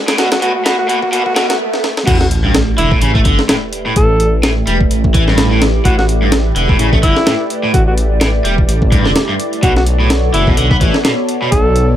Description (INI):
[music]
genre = breakbeat, breaks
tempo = 127 BPM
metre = 4/4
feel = swing 57% on 16ths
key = unclear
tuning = A4 = 440 Hz
[part]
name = phased analog pad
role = sustained chords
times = 0.0-12.0 s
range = A3 to D5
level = -21 LUFS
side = equal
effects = phaser, chorus, sidechain pumping
[part]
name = riser, swell and sub drop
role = sound effects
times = 0.0-4.0 s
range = none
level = -21 LUFS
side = right 1 dB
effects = none
[part]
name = crunchy overdriven guitar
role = riff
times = 0.1-11.5 s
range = G2 to B3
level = -18 LUFS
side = equal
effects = vintage 12-bit sampler grit, tape echo
[part]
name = breakbeat sampler-style drum kit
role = drums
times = 0.1-11.9 s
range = crash cymbal, hi-hat, kick drum, snare drum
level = -14 LUFS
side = equal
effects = none
[part]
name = breathy alto saxophone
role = melody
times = 0.2-11.9 s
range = E4 to A4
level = -18 LUFS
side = equal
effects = telephone sound, vintage 12-bit sampler grit, tape echo
[part]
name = dark detuned saw bass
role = bass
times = 0.2-12.0 s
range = E1 to B1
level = -15 LUFS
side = equal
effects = high-pass filter
[sound]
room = light reverb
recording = high-pass filter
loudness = -10 LUFS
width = side -11 dB against mid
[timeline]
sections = 0.0-2.1 A section; 2.1-12.0 B section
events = build-up 0.0-2.1; riser 0.0-1.6; swell 1.1-2.1; stop 1.6-2.1; drum fill 1.7-2.1; drop 2.1-12.0; impact 2.1-4.0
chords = 0.0 Bm7; 2.1 A7sus4; 9.6 Bm9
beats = | 0.18 0.65 1.13 1.60 | 2.07 2.54 3.02 3.49 | 3.96 4.43 4.91 5.38 | 5.85 6.32 6.79 7.27 | 7.74 8.21 8.69 9.16 | 9.63 10.10 10.57 11.05 | 11.52